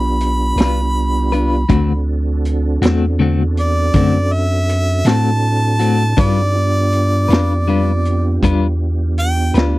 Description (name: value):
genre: slow blues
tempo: 53 BPM (dotted quarters)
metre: 12/8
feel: straight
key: unclear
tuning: A4 = 436 Hz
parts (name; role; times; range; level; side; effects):
- bright harmonica; melody; 0.0-9.6 s; D5 to B5; -20 LUFS; equal; none
- mellow tonewheel organ; sustained chords; 0.0-9.8 s; B3 to A4; -23 LUFS; right 3 dB; slow rotary speaker, chorus vibrato
- punchy sub bass; bass; 0.0-9.8 s; B1 to A2; -16 LUFS; equal; none
- vintage drum kit; drums; 0.2-9.7 s; hi-hat, kick drum, snare drum; -17 LUFS; equal; none
- clean electric guitar; accompaniment; 0.6-9.8 s; D3 to B4; -17 LUFS; left 5 dB; tremolo
room: little or no reverb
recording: dry, close 1970s-style studio recording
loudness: -13 LUFS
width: side -18 dB against mid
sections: 0.0-9.8 A section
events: harmonica solo 0.0-9.8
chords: 0.0 G7; 1.7 D7; 6.2 G7